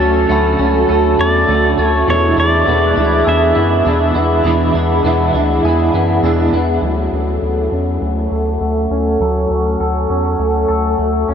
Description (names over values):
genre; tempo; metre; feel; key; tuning
dream pop; 101 BPM; 4/4; straight; unclear; A4 = 440 Hz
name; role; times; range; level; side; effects
pedal steel guitar; melody; 0.0-6.2 s; A4 to E5; -19 LUFS; equal; analog delay
semi-hollow electric guitar; accompaniment; 0.0-6.8 s; E2 to F#4; -19 LUFS; right 3 dB; tremolo, ensemble chorus
warbly tape-like pad; sustained chords; 0.0-11.3 s; F#4 to C#6; -18 LUFS; equal; chorus, built-in reverb, low-pass filter
clean electric guitar; arpeggios; 0.0-11.3 s; E3 to A4; -20 LUFS; left 2 dB; analog chorus, low-pass filter, analog delay
round analog bass; bass; 0.0-11.3 s; C#2 to F#2; -18 LUFS; equal; none
glockenspiel with rubber mallets; texture; 0.3-5.9 s; B5 to G#6; -29 LUFS; left 1 dB; analog delay
room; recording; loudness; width
wet huge ambient reverb, RT60 8.2 s; dreamy mix soaked in reverb; -12 LUFS; side -8 dB against mid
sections
0.0-6.8 A section; 6.8-11.3 B section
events
filter sweep 6.8-11.3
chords
0.0 Dmaj7; 2.1 E7; 6.8 Dmaj7